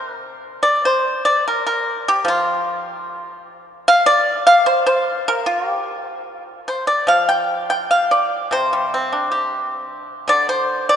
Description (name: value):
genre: chinese traditional, Chinese solo plucked strings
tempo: 69-78 BPM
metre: 2/4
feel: rubato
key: C shang mode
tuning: A4 = 440 Hz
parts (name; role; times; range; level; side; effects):
- pipa; solo; 0.0-11.0 s; C3 to G5; -16 LUFS; equal; none
room: wet cathedral reverb, RT60 4.4 s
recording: recorded in a church or concert hall, nothing above 11.0 kHz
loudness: -15 LUFS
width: side -9 dB against mid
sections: 0.6-11.0 A section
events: none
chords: none